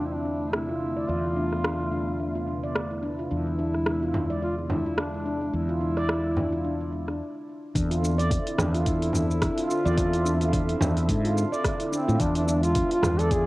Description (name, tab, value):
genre	organic downtempo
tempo	108 BPM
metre	4/4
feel	swing 57% on 16ths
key	unclear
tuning	A4 = 440 Hz
part	dark duduk	melody	0.0-13.5 s	C4 to A4	-29 LUFS	equal	cassette tape, tape echo
part	warm analog pad	sustained chords	0.0-13.5 s	C3 to E5	-34 LUFS	equal	chorus, sidechain pumping, cassette tape
part	handpan	arpeggios	0.0-13.5 s	D4 to D5	-30 LUFS	equal	low-pass filter, cassette tape, tape echo
part	mellow fretless electric bass	bass	0.0-13.5 s	E2 to A2	-28 LUFS	equal	wide subtle chorus, sidechain pumping
part	deep house drum kit	drums	0.5-13.4 s	hi-hat, rim click, shaker	-32 LUFS	equal	low-pass filter on hats, low-pass filter on perc, low-pass filter on snare
part	frame drum	percussion	4.1-13.2 s	none	-30 LUFS	right 1 dB	none
part	electronic kick drum	drums	7.8-13.4 s	none	-28 LUFS	equal	none
room	moderate spring reverb, RT60 2.0 s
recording	home recording on cassette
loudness	-23 LUFS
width	side -20 dB against mid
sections	0.0-7.8 A section; 7.8-13.5 B section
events	filter sweep on handpan 0.0-7.8; stop 7.2-7.8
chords	0.0 Dm9/E; 3.3 E7; 7.8 Dm9/E; 12.2 E7b9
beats	0.53 | 1.09 1.64 2.20 2.75 | 3.31 3.86 4.42 4.98 | 5.53 6.09 6.64 7.20 | 7.75 8.31 8.86 9.42 | 9.98 10.53 11.09 11.64 | 12.20 12.75 13.31